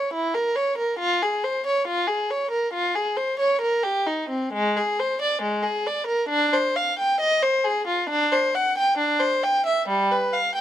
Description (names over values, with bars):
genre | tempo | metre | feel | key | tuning
classical, baroque-style suite movement for unaccompanied violin | 68 BPM | 4/4 | rubato | F minor | A4 = 441 Hz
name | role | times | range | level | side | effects
warm violin | solo | 0.0-10.6 s | G3 to G5 | -21 LUFS | equal | none
room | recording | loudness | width
light reverb | close, detailed microphones | -21 LUFS | side -11 dB against mid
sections
0.0-10.6 A section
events
none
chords
none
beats
0.14 | 1.01 1.87 2.73 3.61 | 4.53 5.43 6.31 7.20 | 8.09 8.98 9.88